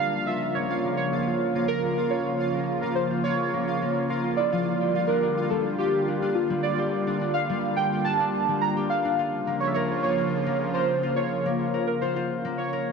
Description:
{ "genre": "IDM", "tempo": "106 BPM", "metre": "4/4", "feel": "straight", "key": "unclear", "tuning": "A4 = 442 Hz", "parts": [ { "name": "warbly lo-fi synth keys", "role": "melody", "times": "0.0-12.9 s", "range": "F4 to Bb5", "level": "-26 LUFS", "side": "right 2 dB", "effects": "chorus, phaser, digital delay" }, { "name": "warm analog pad", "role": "sustained chords", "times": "0.0-12.9 s", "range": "Db3 to F4", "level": "-28 LUFS", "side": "right 2 dB", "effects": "chorus, vintage 12-bit sampler grit" }, { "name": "concert harp", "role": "arpeggios", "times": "0.0-12.9 s", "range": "F3 to Bb4", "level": "-30 LUFS", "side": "left 6 dB", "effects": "low-pass filter, ping-pong delay" }, { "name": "pulsing gated texture", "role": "texture", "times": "0.0-12.9 s", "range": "F4 to F5", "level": "-37 LUFS", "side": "right 1 dB", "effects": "chorus, built-in reverb" } ], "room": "moderate plate reverb, RT60 3.4 s", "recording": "dark, warm production", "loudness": "-23 LUFS", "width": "side -5 dB against mid", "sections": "0.0-12.9 A section", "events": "filter sweep on harp 0.0-12.9", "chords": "0.1 Bbm; 4.7 Gm7; 9.2 Bbm", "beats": "| 0.14 0.70 1.27 1.83 | 2.40 2.97 3.53 4.10 | 4.66 5.23 5.80 6.36 | 6.93 7.49 8.06 8.63 | 9.19 9.76 10.32 10.89 | 11.46 12.02 12.59" }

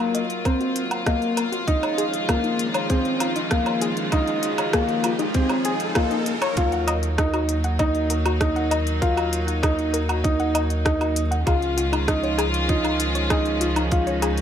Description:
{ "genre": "piano and strings electronica", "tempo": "98 BPM", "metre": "4/4", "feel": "straight", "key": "Eb minor", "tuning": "A4 = 440 Hz", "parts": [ { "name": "warm studio string section", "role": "sustained chords", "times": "0.0-14.4 s", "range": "Db3 to F4", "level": "-28 LUFS", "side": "equal", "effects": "none" }, { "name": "warbly dusty pluck", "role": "arpeggios", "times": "0.0-14.3 s", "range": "Eb4 to Gb5", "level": "-29 LUFS", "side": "left 4 dB", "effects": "chorus, sidechain pumping, ping-pong delay" }, { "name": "dark upright piano", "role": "riff", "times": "0.0-14.3 s", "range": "Bb3 to F4", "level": "-24 LUFS", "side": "equal", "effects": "ping-pong delay" }, { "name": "round analog bass", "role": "bass", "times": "0.0-14.4 s", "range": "Db2 to Eb2", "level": "-27 LUFS", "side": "right 1 dB", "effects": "sidechain pumping, high-pass filter" }, { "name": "riser and swell", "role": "sound effects", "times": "1.6-6.6 s", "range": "none", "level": "-34 LUFS", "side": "right 2 dB", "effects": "none" }, { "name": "organic electronic drum kit", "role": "drums", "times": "0.1-14.4 s", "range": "hi-hat, rim click, woodblock", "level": "-28 LUFS", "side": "right 1 dB", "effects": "none" }, { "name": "electronic kick drum", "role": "drums", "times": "0.5-14.0 s", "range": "none", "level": "-23 LUFS", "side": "right 1 dB", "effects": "none" } ], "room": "moderate lush hall reverb, RT60 2.2 s", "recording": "none", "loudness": "-20 LUFS", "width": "side -9 dB against mid", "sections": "0.0-6.6 A section; 6.6-14.4 B section", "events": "build-up 0.0-6.6; filter sweep on synth arpeggio sound 0.0-6.6; riser 1.6-6.6; swell 5.3-6.6; drop 6.6-14.4", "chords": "0.0 Ebm; 1.7 Dbadd9; 6.6 Ebm; 11.5 Dbadd9", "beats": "0.45 1.06 | 1.68 2.29 2.90 3.51 | 4.12 4.74 5.35 5.96 | 6.57 7.18 7.80 8.41 | 9.02 9.63 10.25 10.86 | 11.47 12.08 12.70 13.31 | 13.92" }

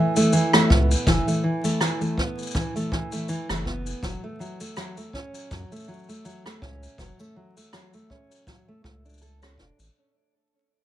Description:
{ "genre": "folktronica", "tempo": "81 BPM", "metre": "4/4", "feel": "swing 56% on 16ths", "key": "unclear", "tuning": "A4 = 440 Hz", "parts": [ { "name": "fingerpicked steel-string acoustic guitar", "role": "arpeggios", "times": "0.0-9.8 s", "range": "E3 to A4", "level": "-24 LUFS", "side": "equal", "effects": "digital delay" }, { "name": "shaker and rim click", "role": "drums", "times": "0.2-9.9 s", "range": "none", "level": "-26 LUFS", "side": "equal", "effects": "none" }, { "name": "round analog bass", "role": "bass", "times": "0.7-9.9 s", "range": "E1 to F#2", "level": "-25 LUFS", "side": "equal", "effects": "tube saturation" }, { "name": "kick drum", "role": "drums", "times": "0.7-9.7 s", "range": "none", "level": "-26 LUFS", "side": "equal", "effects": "none" } ], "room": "moderate small room reverb, RT60 0.5 s", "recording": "vinyl crackle", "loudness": "-21 LUFS", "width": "side -12 dB against mid", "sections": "0.0-10.0 A section", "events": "fade-out 0.0-10.0", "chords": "0.0 Asus2/F#; 4.0 Dmaj7/F# (rootless)", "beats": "0.32 | 1.06 1.80 2.54 3.29 | 4.03 4.77 5.51 6.25 | 6.99 7.73 8.47 9.21" }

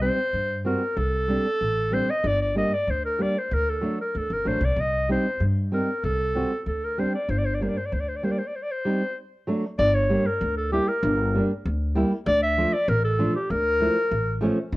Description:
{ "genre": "klezmer", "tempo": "96 BPM", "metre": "2/4", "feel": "straight", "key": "C dorian sharp4, G dorian sharp4 from 9.8 s", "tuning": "A4 = 439 Hz", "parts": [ { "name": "warm clarinet", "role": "melody", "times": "0.0-14.4 s", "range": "G4 to E5", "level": "-24 LUFS", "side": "equal", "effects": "none" }, { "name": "flamenco guitar", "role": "accompaniment", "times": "0.0-14.6 s", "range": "F3 to F#4", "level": "-25 LUFS", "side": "right 1 dB", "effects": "none" }, { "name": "upright bass", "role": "bass", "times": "0.0-14.8 s", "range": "F#1 to G2", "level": "-26 LUFS", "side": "equal", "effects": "none" } ], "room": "moderate studio reverb, RT60 0.7 s", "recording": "worn, warbling old tape, cassette tape, warbly pitch drift", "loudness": "-22 LUFS", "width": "side -19 dB against mid", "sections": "0.0-9.8 A section; 9.8-14.8 B section", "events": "speeding up 0.0-14.8", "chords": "0.0 C5; 2.2 Gm; 3.5 D; 4.8 C5; 7.3 Gm; 8.5 Cm; 9.2 D; 9.8 Gm; 12.3 Dm", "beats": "0.34 | 0.97 1.61 | 2.24 2.88 | 3.51 4.14 | 4.77 5.40 | 6.03 6.66 | 7.29 7.92 | 8.54 9.17 | 9.79 10.41 | 11.03 11.65 | 12.27 12.88 | 13.50 14.12 | 14.73" }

